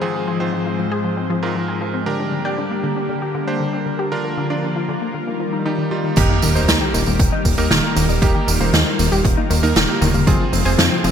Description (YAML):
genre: synthwave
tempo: 117 BPM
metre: 4/4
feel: straight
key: unclear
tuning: A4 = 441 Hz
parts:
  - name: lush unison pad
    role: sustained chords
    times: 0.0-11.1 s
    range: Ab2 to C5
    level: -23 LUFS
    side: left 1 dB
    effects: chorus, sidechain pumping, shimmer reverb
  - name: analog pluck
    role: arpeggios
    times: 0.0-11.1 s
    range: D3 to Ab4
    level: -25 LUFS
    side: left 3 dB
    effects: chorus, ping-pong delay, shimmer reverb
  - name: bright electric grand piano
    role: stabs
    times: 0.0-11.1 s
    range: Ab2 to D5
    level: -25 LUFS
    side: right 4 dB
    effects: ping-pong delay, shimmer reverb
  - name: mellow electric guitar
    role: riff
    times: 6.2-11.1 s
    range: Eb3 to Eb4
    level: -27 LUFS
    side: left 4 dB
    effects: none
  - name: fat analog bass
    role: bass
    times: 6.2-11.1 s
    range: Eb1 to F2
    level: -19 LUFS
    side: equal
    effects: none
  - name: electronic kick drum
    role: drums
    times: 6.2-10.4 s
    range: none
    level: -18 LUFS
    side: equal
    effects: overdrive
  - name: street-band drum kit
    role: drums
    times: 6.2-11.1 s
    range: crash cymbal, hi-hat, snare drum, tambourine, toms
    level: -19 LUFS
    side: right 1 dB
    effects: gated reverb
  - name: sub drop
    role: sound effects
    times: 6.2-8.2 s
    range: none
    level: -26 LUFS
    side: equal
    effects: none
room: moderate plate reverb, RT60 2.1 s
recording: bright 1980s-style digital production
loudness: -16 LUFS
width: side -8 dB against mid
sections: 0.0-6.2 A section; 6.2-11.1 B section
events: impact 6.2-8.2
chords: 0.0 Fm/Ab; 2.1 Gm; 4.1 Bb; 5.1 Ebadd9; 6.2 Eb; 10.3 Fm